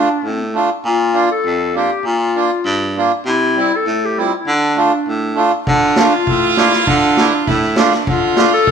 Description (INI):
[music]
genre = klezmer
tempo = 99 BPM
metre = 2/4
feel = straight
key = D minor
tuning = A4 = 439 Hz
[part]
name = clear clarinet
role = melody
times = 0.0-8.7 s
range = D4 to A4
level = -17 LUFS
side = left 3 dB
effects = none
[part]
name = accordion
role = accompaniment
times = 0.0-8.5 s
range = G3 to F4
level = -17 LUFS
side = right 2 dB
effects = none
[part]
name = breathy baritone saxophone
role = bass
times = 0.2-8.7 s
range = F2 to D3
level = -19 LUFS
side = equal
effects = none
[part]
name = warm violin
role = second line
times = 5.7-8.7 s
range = D4 to F4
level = -18 LUFS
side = right 6 dB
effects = none
[part]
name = street-band drum kit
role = drums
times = 5.7-8.7 s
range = kick drum, snare drum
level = -18 LUFS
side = equal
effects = none
[sound]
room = moderate large studio reverb, RT60 1.0 s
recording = band playing live in one room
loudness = -13 LUFS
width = side -7 dB against mid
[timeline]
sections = 0.0-5.7 A section; 5.7-8.7 A section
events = none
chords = 0.0 Dm; 0.8 Bb; 3.3 C; 4.5 Dm